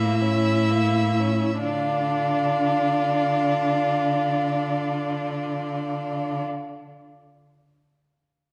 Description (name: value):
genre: classical, slow romantic movement for string quartet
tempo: free time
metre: none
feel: none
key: D minor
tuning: A4 = 440 Hz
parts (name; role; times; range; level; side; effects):
- clear violin; melody; 0.0-6.4 s; D5 to E5; -32 LUFS; equal; none
- rich violin; second line; 0.0-6.5 s; Bb3 to F4; -28 LUFS; equal; none
- rich viola; accompaniment; 0.0-6.4 s; D4 to E4; -30 LUFS; equal; none
- rich cello; bass; 0.0-6.4 s; A2 to D3; -28 LUFS; equal; none
room: moderate concert hall reverb, RT60 1.9 s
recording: dark, warm production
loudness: -23 LUFS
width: mono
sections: 0.0-1.6 A section; 1.6-8.5 B section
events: slowing down 0.0-1.6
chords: 0.0 A; 1.6 Dm